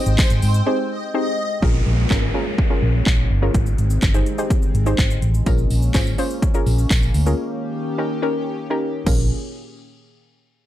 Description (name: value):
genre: dance-pop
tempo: 125 BPM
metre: 4/4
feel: straight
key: Bb dorian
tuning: A4 = 440 Hz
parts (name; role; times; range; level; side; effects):
- soft round pluck; accompaniment; 0.0-9.3 s; C4 to C5; -25 LUFS; equal; chorus
- chorused pulse-width pad; sustained chords; 0.0-9.3 s; Bb2 to G5; -29 LUFS; left 1 dB; sidechain pumping
- supersaw pad; melody; 0.1-1.5 s; Eb5; -27 LUFS; left 1 dB; phaser, sidechain pumping, tape echo
- vintage muted fingered electric bass; bass; 0.1-9.3 s; G1 to Ab2; -18 LUFS; equal; sidechain pumping
- house drum kit; drums; 0.1-9.2 s; crash cymbal, handclaps, hi-hat, kick drum, shaker; -19 LUFS; equal; overdrive
- tambourine; percussion; 0.2-0.5, 5.5-9.3 s; none; -37 LUFS; right 6 dB; none
- downlifter; sound effects; 1.6-5.5 s; none; -31 LUFS; equal; none
room: little or no reverb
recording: dark, warm production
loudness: -17 LUFS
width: side -13 dB against mid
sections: 0.0-1.6 A section; 1.6-9.3 B section; 9.3-10.7 C section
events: drop 0.0-1.6; break 0.7-1.6, 7.4-9.3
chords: 0.0 Abmaj7; 1.6 Bbm7; 3.5 Abmaj7; 5.5 Bbm7; 7.4 Eb7; 9.1 Bbm7; 9.3 N.C.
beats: 0.18 0.67 1.15 | 1.62 2.10 2.58 3.06 | 3.54 4.03 4.50 4.99 | 5.46 5.95 6.42 6.91 | 7.38 7.87 8.35 8.82